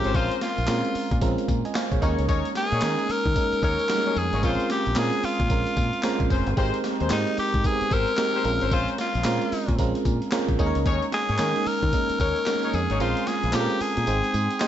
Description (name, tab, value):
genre	R&B, new jack swing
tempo	112 BPM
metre	4/4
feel	swing 62% on 16ths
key	unclear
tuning	A4 = 440 Hz
part	raspy tenor saxophone	melody	0.0-14.7 s	Eb4 to Bb4	-26 LUFS	left 2 dB	tape echo
part	FM electric piano	accompaniment	0.0-14.7 s	G3 to Ab5	-27 LUFS	right 4 dB	chorus
part	mellow horn section	stabs	0.0-13.3 s	Db4 to Db5	-32 LUFS	left 5 dB	tape echo
part	fingered electric bass	bass	0.0-14.5 s	F1 to Eb3	-27 LUFS	equal	none
part	boom bap sampler-style drum kit	drums	0.0-14.7 s	handclaps, hi-hat, kick drum, snare drum, tambourine	-28 LUFS	equal	gated reverb
part	group handclap	percussion	7.1-14.7 s	none	barely audible	none	none
room	light reverb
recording	nothing above 7.9 kHz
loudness	-21 LUFS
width	side -11 dB against mid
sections	0.0-14.7 A section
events	kick muted 13.0-14.7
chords	0.0 Bbm9; 2.0 Eb7sus4; 4.4 Bbm9; 6.6 Abmaj9; 8.4 Bbm9; 10.6 Eb7sus4; 13.0 Bbm9; 14.1 Abmaj7